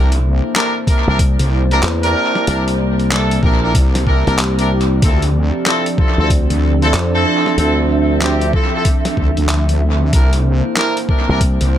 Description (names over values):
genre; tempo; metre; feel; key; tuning
glitch hop; 94 BPM; 4/4; swing 63% on 16ths; unclear; A4 = 440 Hz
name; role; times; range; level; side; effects
dark analog pad; sustained chords; 0.0-11.8 s; F3 to E5; -23 LUFS; left 1 dB; chorus, sidechain pumping
clear horn section; stabs; 0.0-11.4 s; C4 to Bb4; -20 LUFS; equal; vintage 12-bit sampler grit, sidechain pumping, dub echo
wobble bass; bass; 0.0-11.8 s; C2 to D2; -14 LUFS; equal; chorus, overdrive
warbly tape-like pad; texture; 0.0-11.8 s; C4 to E5; -24 LUFS; right 3 dB; chorus, built-in reverb, sidechain pumping
boom bap sampler-style drum kit; drums; 0.1-11.7 s; handclaps, hi-hat, snare drum; -23 LUFS; left 1 dB; dub echo
electronic kick drum; drums; 0.9-11.6 s; none; -15 LUFS; equal; none
slap bass with an envelope filter; bass; 1.1-11.6 s; Bb1 to F2; -16 LUFS; equal; none
room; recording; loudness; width
little or no reverb; echo-heavy mix; -12 LUFS; side -11 dB against mid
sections
0.0-11.8 A section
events
none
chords
0.0 C7; 5.0 Dm7; 10.1 C7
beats
0.56 1.20 1.83 | 2.47 3.11 3.75 4.39 | 5.03 5.66 6.30 6.94 | 7.58 8.22 8.86 9.49 | 10.13 10.77 11.41